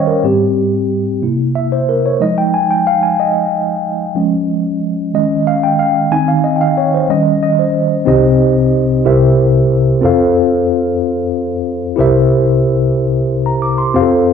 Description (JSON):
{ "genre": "gospel", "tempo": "61 BPM (dotted quarters)", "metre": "6/8", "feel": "straight", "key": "unclear", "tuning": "A4 = 440 Hz", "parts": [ { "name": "mellow tine electric piano", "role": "solo", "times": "0.0-14.3 s", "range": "C2 to D6", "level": "-11 LUFS", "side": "equal", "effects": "medium stereo tremolo" } ], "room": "wet large studio reverb, RT60 1.2 s", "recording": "band playing live in one room", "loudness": "-11 LUFS", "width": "side -7 dB against mid", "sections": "0.0-8.1 A section; 8.1-14.3 B section", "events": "tine electric piano solo 0.0-8.1", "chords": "0.2 Abmaj7; 1.2 C7; 2.2 Fm7; 4.2 Dbadd9/F; 5.1 Eb7sus4; 6.1 Eb13; 7.1 Eb7; 8.1 Cm; 9.1 C7; 10.0 F; 12.0 C7", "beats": "| 0.24 1.23 | 2.21 3.19 | 4.17 5.15 | 6.13 7.11 | 8.08 9.06 | 10.04 11.02 | 11.99 12.97 | 13.95" }